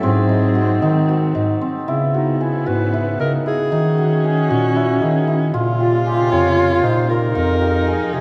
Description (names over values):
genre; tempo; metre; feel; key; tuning
contemporary instrumental, chamber music in an uneven meter; 230 BPM (eighths); 7/8; straight; unclear; A4 = 442 Hz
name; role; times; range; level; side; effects
clear clarinet; melody; 0.0-8.2 s; D#4 to C#5; -26 LUFS; equal; none
warm cello; second line; 0.0-8.2 s; B3 to E#4; -25 LUFS; equal; none
warm symphonic string section; sustained chords; 0.0-8.2 s; B#2 to Ab4; -29 LUFS; equal; none
hammered dulcimer; arpeggios; 0.0-8.2 s; B#3 to G#4; -24 LUFS; equal; none
breathy bass clarinet; bass; 0.0-8.2 s; E#2 to D#3; -21 LUFS; equal; none
room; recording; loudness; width
moderate concert hall reverb, RT60 2.0 s; dark, warm production; -17 LUFS; mono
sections
0.0-1.9 A section; 1.9-8.2 B section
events
none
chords
0.0 G#7; 1.9 C#m7; 3.7 D#m7; 5.5 A#madd9; 7.4 Fm7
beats
| 0.04 0.30 0.56 0.82 1.09 1.35 1.62 | 1.89 2.15 2.41 2.67 2.94 3.20 3.46 | 3.72 3.98 4.24 4.50 4.76 5.02 5.28 | 5.54 5.80 6.06 6.32 6.58 6.84 7.10 | 7.36 7.62 7.88 8.14